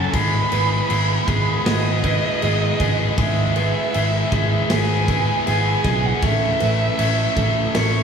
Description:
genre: post-rock.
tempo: 79 BPM.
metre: 4/4.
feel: straight.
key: E major.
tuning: A4 = 442 Hz.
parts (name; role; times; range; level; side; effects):
dark violin; melody; 0.0-8.0 s; D#5 to C#6; -24 LUFS; right 3 dB; analog delay.
felt-muted upright piano; arpeggios; 0.0-8.0 s; G#4 to B4; -31 LUFS; right 13 dB; analog delay.
twangy electric guitar; arpeggios; 0.0-6.2 s; F#3 to F#4; -32 LUFS; right 2 dB; analog delay.
cranked stack guitar; riff; 0.0-8.0 s; F#3 to A4; -23 LUFS; left 5 dB; overdrive.
fingered electric bass; bass; 0.0-8.0 s; G#1 to B1; -21 LUFS; equal; none.
big rock drum kit; drums; 0.1-7.9 s; crash cymbal, kick drum, snare drum; -24 LUFS; equal; none.
room: light reverb, small room ambience.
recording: none.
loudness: -17 LUFS.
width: side -6 dB against mid.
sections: 0.0-8.0 A section.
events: none.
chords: 0.1 E/G#; 6.2 A.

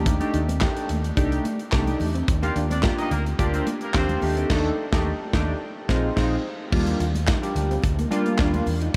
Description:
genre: early-eighties boogie funk.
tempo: 108 BPM.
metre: 4/4.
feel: straight.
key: Eb lydian.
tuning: A4 = 440 Hz.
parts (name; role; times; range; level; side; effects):
chorused polysynth; accompaniment; 0.0-8.7 s; G3 to A4; -28 LUFS; equal; none.
mellow electric guitar; riff; 0.0-8.9 s; A3 to F4; -36 LUFS; equal; none.
vintage muted fingered electric bass; bass; 0.0-9.0 s; Bb1 to Fb2; -28 LUFS; equal; none.
modern studio drum kit; drums; 0.1-9.0 s; crash cymbal, handclaps, hi-hat, kick drum, snare drum; -28 LUFS; equal; none.
congas; percussion; 0.2-8.8 s; none; -40 LUFS; equal; none.
clear horn section; second line; 2.4-4.2 s; Bb3 to F5; -37 LUFS; equal; none.
room: moderate huge ambient reverb, RT60 8.2 s.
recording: dreamy mix soaked in reverb.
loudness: -23 LUFS.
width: mono.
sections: 0.0-6.7 A section; 6.7-9.0 B section.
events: band accent 4.5-6.7.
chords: 0.0 Cm69; 2.3 Ebmaj9; 4.2 Ebmaj7#11; 5.6 Bb9sus4; 6.7 Ebmaj7.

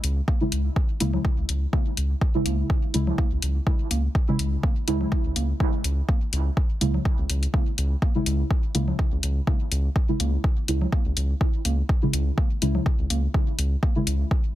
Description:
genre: dub techno.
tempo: 124 BPM.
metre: 4/4.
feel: swing 54% on 16ths.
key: C# minor.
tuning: A4 = 440 Hz.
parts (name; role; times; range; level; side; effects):
round analog bass; bass; 0.0-14.2 s; C#2; -24 LUFS; equal; sidechain pumping.
electronic hi-hat; drums; 0.0-14.2 s; none; -28 LUFS; left 4 dB; overdrive.
electronic kick drum; drums; 0.3-14.4 s; none; -23 LUFS; equal; overdrive.
congas; percussion; 0.3-13.9 s; none; -34 LUFS; right 2 dB; sidechain pumping on perc, dub echo.
deep mellow chord stab; stabs; 0.4-14.5 s; C#3 to E4; -29 LUFS; equal; chorus, phaser, sidechain pumping, dub echo.
room: little or no reverb.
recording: dense, heavily limited modern master.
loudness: -21 LUFS.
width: side -14 dB against mid.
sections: 0.0-14.6 A section.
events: none.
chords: 0.0 C#m.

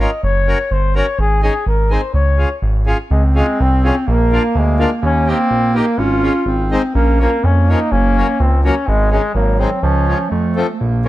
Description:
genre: alpine folk, alpine dance band.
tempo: 126 BPM.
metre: 2/4.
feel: rubato.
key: Db major.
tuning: A4 = 441 Hz.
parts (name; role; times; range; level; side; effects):
mellow flugelhorn; melody; 0.0-10.3 s; Ab3 to Eb5; -19 LUFS; left 2 dB; none.
accordion; accompaniment; 0.0-11.1 s; Eb3 to Bb4; -22 LUFS; left 2 dB; none.
smooth synth bass; bass; 0.0-11.1 s; Gb1 to F2; -15 LUFS; equal; none.
dark clarinet; second line; 3.1-11.1 s; F3 to Db4; -19 LUFS; right 3 dB; none.
room: light reverb, small room ambience.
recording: none.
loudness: -13 LUFS.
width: side -16 dB against mid.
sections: 0.0-3.1 A section; 3.1-10.8 A section.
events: none.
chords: 0.2 Gb; 1.2 Absus4; 1.7 Abadd9; 2.1 Db; 4.1 Bb; 5.0 Eb; 6.0 Db/Ab; 6.5 Ab; 6.9 Bbm; 7.9 Gb; 8.9 Absus4; 9.3 Abadd9; 9.8 Db; 10.3 F.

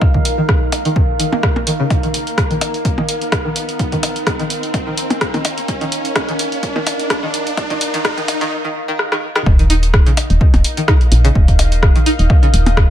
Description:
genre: minimal techno.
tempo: 127 BPM.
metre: 4/4.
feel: swing 55% on 16ths.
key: unclear.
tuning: A4 = 440 Hz.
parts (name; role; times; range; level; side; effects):
electronic kick drum; drums; 0.0-12.9 s; none; -14 LUFS; equal; none.
percussion blips; percussion; 0.0-12.8 s; none; -23 LUFS; left 3 dB; ping-pong delay.
riser; sound effects; 0.0-8.5 s; none; -25 LUFS; equal; none.
deep dark ambient pad; texture; 0.0-12.9 s; Eb4 to F5; -24 LUFS; equal; chorus, built-in reverb, sidechain pumping.
string-like resonator pluck; riff; 0.1-12.5 s; Db3 to Eb4; -22 LUFS; equal; wide subtle chorus, sidechain pumping, dub echo.
punchy analog drum machine; drums; 0.3-12.9 s; hi-hat, rim click; -20 LUFS; equal; none.
woody FM bass; bass; 9.5-12.9 s; Eb1 to Bb1; -13 LUFS; equal; sidechain pumping.
pulsing gated texture; texture; 9.9-12.9 s; Eb4 to Eb5; -30 LUFS; equal; chorus, built-in reverb, sidechain pumping.
room: light reverb.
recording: high-pass filter.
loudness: -13 LUFS.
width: side -11 dB against mid.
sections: 0.0-9.5 A section; 9.5-12.9 B section.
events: build-up 0.0-9.5; riser 0.0-8.5; filter sweep on synth pluck 0.0-9.5; filter sweep 0.0-9.5; drum fill 9.0-9.5; drop 9.5-12.9.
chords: 0.0 Eb5.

